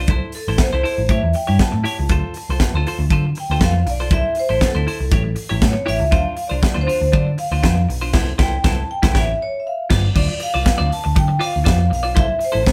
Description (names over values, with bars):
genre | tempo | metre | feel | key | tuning
disco | 119 BPM | 4/4 | straight | D dorian | A4 = 440 Hz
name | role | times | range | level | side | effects
vibraphone with hard mallets | melody | 0.0-12.7 s | A4 to A5 | -25 LUFS | equal | none
semi-hollow electric guitar | accompaniment | 0.0-12.7 s | D4 to D5 | -28 LUFS | equal | none
hollow-body short-scale picked electric bass | bass | 0.0-12.7 s | G1 to D3 | -22 LUFS | equal | none
modern studio drum kit | drums | 0.1-12.7 s | crash cymbal, hi-hat, kick drum, snare drum | -22 LUFS | equal | none
room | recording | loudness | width
moderate studio reverb, RT60 0.6 s | band playing live in one room | -18 LUFS | mono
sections
0.0-10.2 A section; 10.2-12.7 B section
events
vibraphone solo 0.0-10.2; band accent 8.1-10.2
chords
0.1 C6; 1.1 A7; 2.1 Dm7; 4.1 C6; 5.1 A7; 6.1 Dm7; 8.1 C6; 9.2 A7; 9.7 G7sus4; 10.2 Dm7; 12.2 C6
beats
| 0.09 0.59 1.10 1.60 | 2.10 2.60 3.11 3.61 | 4.12 4.62 5.12 5.63 | 6.13 6.63 7.14 7.64 | 8.14 8.65 9.15 9.65 | 10.16 10.66 11.16 11.66 | 12.17 12.67